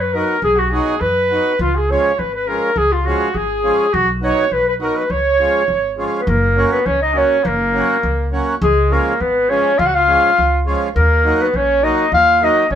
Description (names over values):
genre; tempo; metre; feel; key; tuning
balkan folk; 103 BPM; 2/4; straight; Db mixolydian; A4 = 441 Hz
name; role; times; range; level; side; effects
mellow clarinet; melody; 0.0-12.8 s; F4 to Gb5; -16 LUFS; left 1 dB; none
clear trumpet; second line; 0.0-12.8 s; Ab3 to Db5; -22 LUFS; right 4 dB; none
upright bass; bass; 0.0-12.8 s; Gb1 to Gb2; -20 LUFS; equal; none
accordion; accompaniment; 0.1-12.6 s; F3 to Gb4; -20 LUFS; right 2 dB; none
room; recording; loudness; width
moderate studio reverb, RT60 0.6 s; band playing live in one room; -13 LUFS; side -9 dB against mid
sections
0.0-6.3 A section; 6.3-12.8 B section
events
none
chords
0.0 Cb; 1.6 Db; 3.9 Cb; 5.1 Db; 6.3 Gb; 8.6 Db; 11.0 Ebm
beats
| 0.43 1.01 | 1.59 2.18 | 2.76 3.35 | 3.94 4.52 | 5.11 5.69 | 6.28 6.86 | 7.45 8.03 | 8.62 9.20 | 9.79 10.37 | 10.96 11.54 | 12.12 12.71